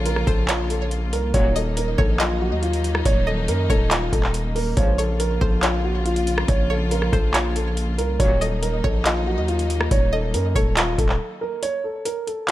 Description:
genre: hip hop, trap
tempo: 140 BPM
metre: 4/4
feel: half-time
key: unclear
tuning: A4 = 440 Hz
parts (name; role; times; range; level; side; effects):
- dark concert grand piano; melody; 0.0-12.5 s; F4 to Db5; -25 LUFS; right 1 dB; low-pass filter, digital delay
- string-like resonator pluck; second line; 0.0-11.2 s; C5 to Eb5; -30 LUFS; equal; chorus, phaser, digital delay
- warm studio string section; sustained chords; 0.0-11.6 s; Db3 to F4; -30 LUFS; equal; none
- distorted 808-style bass; bass; 0.0-11.2 s; Eb1 to Gb2; -23 LUFS; equal; distortion
- booming analog drum machine; drums; 0.1-12.5 s; handclaps, hi-hat, kick drum, rim click; -22 LUFS; equal; vintage 12-bit sampler grit
- dark brass ensemble; stabs; 1.3-1.6, 4.8-5.1, 8.2-8.5 s; Db2 to Gb3; -30 LUFS; left 2 dB; none
room: small room reverb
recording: none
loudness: -19 LUFS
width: side -14 dB against mid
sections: 0.0-11.6 A section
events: break 11.2-11.6, 11.6-12.5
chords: 0.0 Bbm; 1.3 Ebm; 4.8 Bbm; 8.2 Ebm; 11.6 N.C.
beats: 0.06 0.48 0.91 | 1.34 1.77 2.20 2.63 | 3.06 3.48 3.91 4.34 | 4.77 5.20 5.63 6.05 | 6.48 6.91 7.34 7.77 | 8.20 8.63 9.05 9.48 | 9.91 10.34 10.77 11.20 | 11.63 12.05 12.48

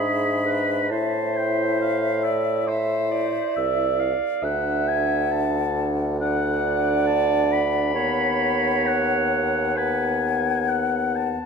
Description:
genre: classical, slow romantic movement for wind quintet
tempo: 67 BPM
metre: 4/4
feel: rubato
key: A minor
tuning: A4 = 440 Hz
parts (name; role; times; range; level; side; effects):
- hollow concert flute; melody; 0.0-11.4 s; E5 to F#5; -28 LUFS; left 13 dB; none
- warm oboe; second line; 0.0-11.5 s; C5 to B5; -28 LUFS; left 4 dB; none
- dark French horn; accompaniment; 0.0-11.4 s; B3 to E4; -30 LUFS; left 2 dB; none
- warm clarinet; accompaniment; 0.0-10.2 s; G#4 to E5; -25 LUFS; right 9 dB; none
- warm bassoon; bass; 0.0-11.4 s; C2 to A2; -26 LUFS; right 2 dB; none
room: moderate concert hall reverb, RT60 1.9 s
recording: none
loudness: -20 LUFS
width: side -6 dB against mid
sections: 0.0-11.5 A section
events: none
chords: 0.0 E7/G#; 0.9 Am; 4.4 D; 8.0 B/D#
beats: 0.01 | 0.91 1.81 2.68 3.56 | 4.43 5.31 6.20 7.07 | 7.95 8.86 9.77 10.68

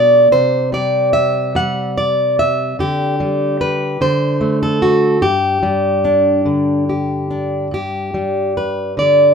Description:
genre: folk, solo fingerstyle acoustic guitar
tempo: 49 BPM (dotted quarters)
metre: 6/8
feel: rubato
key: G major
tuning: A4 = 436 Hz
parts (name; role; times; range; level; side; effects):
- fingerpicked plugged-in steel-string acoustic guitar; solo; 0.0-9.3 s; G2 to F#5; -13 LUFS; equal; none
room: light reverb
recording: minimal, uncompressed stereo recording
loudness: -14 LUFS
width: side -6 dB against mid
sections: 0.0-7.7 A section; 7.7-9.3 A section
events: none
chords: 0.3 C; 2.8 Dsus4; 4.0 D5; 5.2 G5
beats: | 0.32 1.56 | 2.79 4.00 | 5.22 6.45 | 7.71 8.96

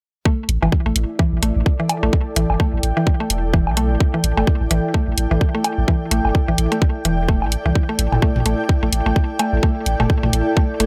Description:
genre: minimal techno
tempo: 128 BPM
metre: 4/4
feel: swing 58% on 16ths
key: unclear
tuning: A4 = 441 Hz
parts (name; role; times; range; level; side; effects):
- mallet-like synth pluck; riff; 0.3-10.9 s; E3 to A3; -26 LUFS; equal; chorus, cassette tape, sidechain pumping, tape echo
- electronic kick drum; drums; 0.3-10.7 s; none; -19 LUFS; equal; none
- granular cloud pad; texture; 0.9-10.9 s; E4 to G5; -28 LUFS; equal; built-in reverb, sidechain pumping
- punchy sub bass; bass; 0.5-10.9 s; E1 to C2; -22 LUFS; equal; sidechain pumping
- electronic hi-hat; drums; 0.5-10.9 s; none; -23 LUFS; equal; none
- electronic woodblock and toms; percussion; 0.6-10.3 s; none; -25 LUFS; equal; none
room: light reverb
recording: none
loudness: -19 LUFS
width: mono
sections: 0.3-10.9 A section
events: none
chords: 0.3 A7(no3)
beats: | 0.25 0.72 1.19 1.66 | 2.13 2.60 3.07 3.54 | 4.00 4.47 4.94 5.41 | 5.88 6.35 6.82 7.29 | 7.75 8.22 8.69 9.16 | 9.63 10.10 10.57

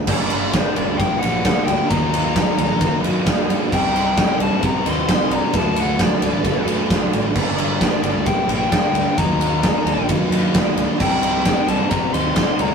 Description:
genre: quiet-loud alternative rock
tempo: 132 BPM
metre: 4/4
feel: straight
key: G harmonic minor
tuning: A4 = 435 Hz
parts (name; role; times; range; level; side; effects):
- fuzz fingered electric bass; bass; 0.0-12.7 s; G1 to Eb3; -26 LUFS; equal; overdrive
- dark smooth lead guitar; melody; 0.1-12.7 s; D5 to C6; -23 LUFS; left 4 dB; overdrive
- fuzz guitar; riff; 0.1-12.7 s; G2 to Eb4; -30 LUFS; left 1 dB; none
- sludgy distorted guitar; riff; 0.1-12.7 s; G2 to Eb4; -24 LUFS; right 5 dB; overdrive
- thick fuzz guitar; riff; 0.1-12.7 s; G2 to Eb4; -30 LUFS; left 4 dB; none
- big rock drum kit; drums; 0.1-12.7 s; crash cymbal, kick drum, ride cymbal, snare drum; -19 LUFS; equal; none
room: moderate small room reverb, RT60 0.5 s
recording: rough rehearsal-room recording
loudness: -16 LUFS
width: side -6 dB against mid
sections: 0.1-12.7 A section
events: none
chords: 0.1 Gm; 1.9 Ebm; 3.7 Cm; 5.5 D; 7.4 Gm; 9.2 Ebm; 11.0 Cm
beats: | 0.08 0.54 1.00 1.45 | 1.91 2.36 2.81 3.27 | 3.73 4.18 4.63 5.09 | 5.54 6.00 6.45 6.91 | 7.36 7.82 8.27 8.73 | 9.18 9.64 10.09 10.55 | 11.00 11.46 11.91 12.37

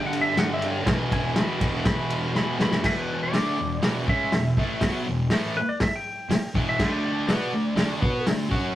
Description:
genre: garage rock duo or trio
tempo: 122 BPM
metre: 4/4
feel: straight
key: unclear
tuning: A4 = 438 Hz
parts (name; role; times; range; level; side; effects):
- clean lap steel guitar; melody; 0.0-8.2 s; B4 to B5; -29 LUFS; equal; none
- thick fuzz guitar; riff; 0.0-8.8 s; E2 to B4; -26 LUFS; equal; distortion
- vintage drum kit; drums; 0.1-8.6 s; crash cymbal, hi-hat, kick drum, ride cymbal, snare drum; -25 LUFS; equal; none
room: light reverb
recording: rough rehearsal-room recording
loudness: -22 LUFS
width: side -13 dB against mid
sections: 0.0-2.8 A section; 2.8-8.8 B section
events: drum fill 2.3-2.8; electric slide guitar solo 2.8-8.8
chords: 0.0 G5; 0.9 E5; 6.8 D5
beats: 0.37 | 0.86 1.36 1.85 2.35 | 2.84 3.33 3.83 4.32 | 4.82 5.31 5.80 6.30 | 6.79 7.28 7.77 8.27

